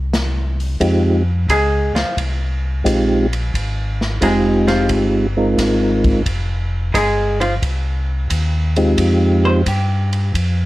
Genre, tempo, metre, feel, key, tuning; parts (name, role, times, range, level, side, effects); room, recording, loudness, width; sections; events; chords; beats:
soul jazz organ trio; 88 BPM; 4/4; swing 68% on 8ths; F minor; A4 = 440 Hz
mellow tonewheel organ; bass; 0.0-10.7 s; F1 to G2; -18 LUFS; equal; slow rotary speaker
swinging big-band drum kit; drums; 0.1-10.6 s; hi-hat, kick drum, ride cymbal, snare drum; -24 LUFS; equal
percussive tonewheel organ; melody; 0.8-9.6 s; Ab3 to Bb4; -15 LUFS; equal; slow rotary speaker, chorus vibrato
archtop guitar, miked and amplified; accompaniment; 1.5-10.3 s; F3 to C5; -18 LUFS; equal
light reverb; worn, warbling old tape, cassette tape, warbly pitch drift; -15 LUFS; side -17 dB against mid
0.8-10.7 A section
hollow-body jazz guitar solo 0.8-10.7
0.0 N.C.; 0.8 Fm9
0.13 | 0.81 1.49 2.17 2.85 | 3.54 4.22 4.90 5.58 | 6.26 6.94 7.62 8.30 | 8.98 9.66 10.34